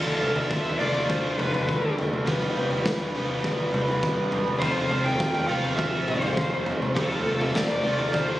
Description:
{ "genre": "indie rock", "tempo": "102 BPM", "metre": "4/4", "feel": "straight", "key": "G mixolydian", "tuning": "A4 = 439 Hz", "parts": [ { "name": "bluesy overdriven lead guitar", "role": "melody", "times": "0.0-8.4 s", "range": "A4 to G5", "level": "-28 LUFS", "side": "left 1 dB", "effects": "distortion, analog delay" }, { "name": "overdriven electric guitar", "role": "riff", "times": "0.0-8.4 s", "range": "D3 to B4", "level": "-30 LUFS", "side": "left 3 dB", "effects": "none" }, { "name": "raw garage guitar", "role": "riff", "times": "0.0-8.4 s", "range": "F2 to G4", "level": "-29 LUFS", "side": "right 4 dB", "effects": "overdrive, lush chorus" }, { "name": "growling fingered electric bass", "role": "bass", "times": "0.0-7.8 s", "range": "E1 to D3", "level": "-33 LUFS", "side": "equal", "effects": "overdrive" }, { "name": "raw garage drum kit", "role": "drums", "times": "0.1-8.3 s", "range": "kick drum, snare drum, toms", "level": "-28 LUFS", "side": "equal", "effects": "none" }, { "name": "overdriven combo organ", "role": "sustained chords", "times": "4.6-8.4 s", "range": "none", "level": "barely audible", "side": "none", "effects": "none" } ], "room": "light reverb", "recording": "recorded on a phone in the room, studio reverb, compression", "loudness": "-22 LUFS", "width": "side -15 dB against mid", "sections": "0.0-8.4 A section", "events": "none", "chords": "0.0 Dm; 2.3 G7(no3); 4.6 F" }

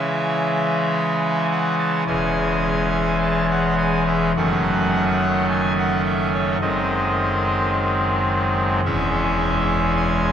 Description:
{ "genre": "classical, chorale-style piece for pipe organ", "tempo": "53 BPM", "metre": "4/4", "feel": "rubato", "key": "C# minor", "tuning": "A4 = 443 Hz", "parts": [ { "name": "pipe organ, trumpet", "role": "solo", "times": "0.0-10.3 s", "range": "E1 to A5", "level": "-18 LUFS", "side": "equal", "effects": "none" } ], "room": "wet cathedral reverb, RT60 5.0 s", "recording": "recorded in a church or concert hall", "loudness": "-18 LUFS", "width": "side -9 dB against mid", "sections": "0.0-10.3 A section", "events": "none", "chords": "0.0 C#m; 2.1 C#m/E; 4.4 D#m7b5/F#; 6.6 G#7/F#; 8.8 C#m/E" }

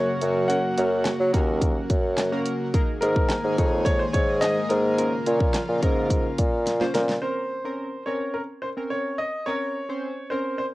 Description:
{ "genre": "dance-pop", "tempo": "107 BPM", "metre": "4/4", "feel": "straight", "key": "Bb minor", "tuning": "A4 = 440 Hz", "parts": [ { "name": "clear concert grand piano", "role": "melody", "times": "0.0-10.6 s", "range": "Bb4 to Gb5", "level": "-28 LUFS", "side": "equal", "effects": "cassette tape" }, { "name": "airy breathy pad", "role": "sustained chords", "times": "0.0-7.2 s", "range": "Db3 to Ab4", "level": "-31 LUFS", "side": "left 1 dB", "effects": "chorus, sidechain pumping, cassette tape" }, { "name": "warm bassoon", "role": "bass", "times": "0.0-7.2 s", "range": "Eb2 to Gb3", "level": "-24 LUFS", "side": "equal", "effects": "sidechain pumping" }, { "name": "pop drum kit", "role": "drums", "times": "0.2-7.2 s", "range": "handclaps, hi-hat, kick drum, snare drum", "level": "-24 LUFS", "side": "equal", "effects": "cassette tape" }, { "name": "chorused retro synth keys", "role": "accompaniment", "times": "0.5-10.6 s", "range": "Bb3 to Db5", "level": "-30 LUFS", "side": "right 1 dB", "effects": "tremolo, sidechain pumping, cassette tape" } ], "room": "light reverb", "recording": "home recording on cassette", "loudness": "-22 LUFS", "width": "side -18 dB against mid", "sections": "0.0-7.2 A section; 7.2-10.7 B section", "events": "drum fill 6.7-7.2", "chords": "0.0 Gb; 2.7 Absus2; 5.0 Bbm; 7.2 Bbmadd9" }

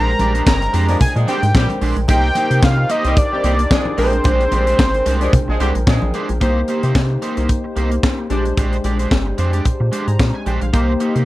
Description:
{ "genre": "early-eighties boogie funk", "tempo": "111 BPM", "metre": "4/4", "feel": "swing 56% on 16ths", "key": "C minor", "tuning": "A4 = 440 Hz", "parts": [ { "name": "fat analog lead", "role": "melody", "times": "0.0-5.8 s", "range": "C5 to Bb5", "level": "-19 LUFS", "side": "equal", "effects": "none" }, { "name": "funky polysynth comp", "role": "accompaniment", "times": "0.0-11.2 s", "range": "Ab3 to Bb5", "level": "-23 LUFS", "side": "left 1 dB", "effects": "chorus" }, { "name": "electric guitar at the edge of break-up", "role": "riff", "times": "0.0-11.2 s", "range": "Ab3 to D5", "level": "-24 LUFS", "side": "right 3 dB", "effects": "analog chorus" }, { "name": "rubbery square bass", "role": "bass", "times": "0.0-11.2 s", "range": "G1 to C3", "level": "-18 LUFS", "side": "equal", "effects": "none" }, { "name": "tight funk drum kit", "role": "drums", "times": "0.2-11.2 s", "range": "handclaps, hi-hat, kick drum, snare drum", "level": "-17 LUFS", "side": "equal", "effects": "none" }, { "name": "congas", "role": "percussion", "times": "0.2-6.1 s", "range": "none", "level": "-24 LUFS", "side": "left 1 dB", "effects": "none" }, { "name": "dark horn section", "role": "second line", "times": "0.9-6.3 s", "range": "D3 to Ab4", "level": "-25 LUFS", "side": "left 2 dB", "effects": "none" } ], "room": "light reverb", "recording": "none", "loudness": "-14 LUFS", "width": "side -17 dB against mid", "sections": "0.0-6.4 A section; 6.4-11.2 B section", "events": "none", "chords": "0.0 Bb13; 2.1 Cm7; 4.0 Bb13; 6.4 Cm7; 8.3 Bb13; 10.7 Cm7" }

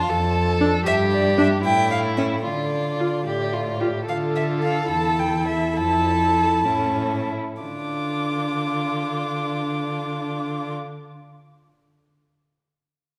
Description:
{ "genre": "quick classical-period movement for string quartet", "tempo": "61-78 BPM (dotted quarters)", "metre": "6/8", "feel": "rubato", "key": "D minor", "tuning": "A4 = 440 Hz", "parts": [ { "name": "dark violin", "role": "melody", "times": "0.0-10.7 s", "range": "D5 to D6", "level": "-27 LUFS", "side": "equal", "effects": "none" }, { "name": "rich violin", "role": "second line", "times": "0.0-10.7 s", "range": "E4 to A4", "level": "-29 LUFS", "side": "equal", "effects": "none" }, { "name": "rich cello", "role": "bass", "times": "0.1-10.7 s", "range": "E2 to D3", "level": "-28 LUFS", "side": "equal", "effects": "none" }, { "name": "rich viola", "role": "accompaniment", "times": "0.6-10.7 s", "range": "C#4 to F4", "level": "-29 LUFS", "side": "equal", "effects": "none" } ], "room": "wet concert hall reverb, RT60 1.9 s", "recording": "none", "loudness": "-22 LUFS", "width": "mono", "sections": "0.0-4.1 A section; 4.1-7.6 B section; 7.6-11.5 C section", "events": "slowing down 3.3-7.6", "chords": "0.0 Dm/F; 0.9 G5; 1.6 A; 2.4 Dm; 4.9 A5/E; 5.8 Fmaj7; 6.6 A; 7.6 Dm" }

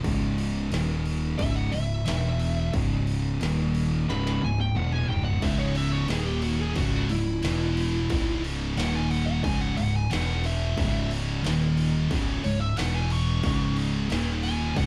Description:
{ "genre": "stoner and doom metal", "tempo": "90 BPM", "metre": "4/4", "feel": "straight", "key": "C# dorian", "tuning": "A4 = 441 Hz", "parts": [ { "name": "thick fuzz guitar", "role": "riff", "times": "0.0-14.9 s", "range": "C#2 to E3", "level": "-31 LUFS", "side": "equal", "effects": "distortion" }, { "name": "thick fuzz guitar", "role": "riff", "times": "0.0-14.9 s", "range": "C#2 to E3", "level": "-32 LUFS", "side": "equal", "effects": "distortion" }, { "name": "fuzz fingered electric bass", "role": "bass", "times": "0.0-14.9 s", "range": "C#1 to E1", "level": "-33 LUFS", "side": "equal", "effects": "overdrive" }, { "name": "industrial drum kit", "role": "drums", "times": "0.0-14.9 s", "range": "crash cymbal, kick drum, snare drum, toms", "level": "-35 LUFS", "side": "equal", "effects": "distortion" }, { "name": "fuzz lead guitar", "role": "melody", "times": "1.4-14.9 s", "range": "E4 to C#6", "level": "-35 LUFS", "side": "equal", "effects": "distortion" }, { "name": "heavy high-gain guitar", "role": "riff", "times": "5.4-14.9 s", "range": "C#2 to E3", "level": "-36 LUFS", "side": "equal", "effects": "distortion" } ], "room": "moderate studio ambience, RT60 0.5 s", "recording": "band playing live in one room, cassette tape", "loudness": "-26 LUFS", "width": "mono", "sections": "0.0-14.9 A section", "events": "lead electric guitar solo 0.0-14.9; drum fill 4.1-5.4", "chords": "0.0 C#5; 0.7 D#5; 1.4 C#m; 2.1 E5; 2.7 C#5; 3.4 D#5; 4.1 C#m; 6.1 D#5; 6.8 C#m; 7.4 E5; 8.1 C#m; 8.8 D#5; 9.4 C#5; 10.1 E5; 10.8 C#m; 11.4 D#5; 12.1 C#5; 12.8 E5; 13.4 C#5; 14.1 D#5" }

